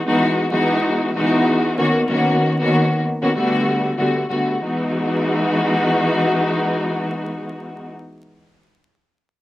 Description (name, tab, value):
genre	hip hop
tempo	95 BPM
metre	4/4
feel	swing 60% on 16ths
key	E lydian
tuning	A4 = 440 Hz
part	warm studio string section	accompaniment	0.0-7.9 s	D3 to F#4	-17 LUFS	left 1 dB	high-pass filter, low-pass filter
room	light reverb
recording	vinyl crackle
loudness	-16 LUFS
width	side -15 dB against mid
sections	0.0-4.6 A section; 4.6-7.1 B section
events	none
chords	0.0 Emaj9; 1.8 Bmaj9; 3.4 Gmaj9; 4.6 Emaj9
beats	0.20 0.83 1.46 | 2.10 2.73 3.36 3.99 | 4.62 5.25 5.88 6.52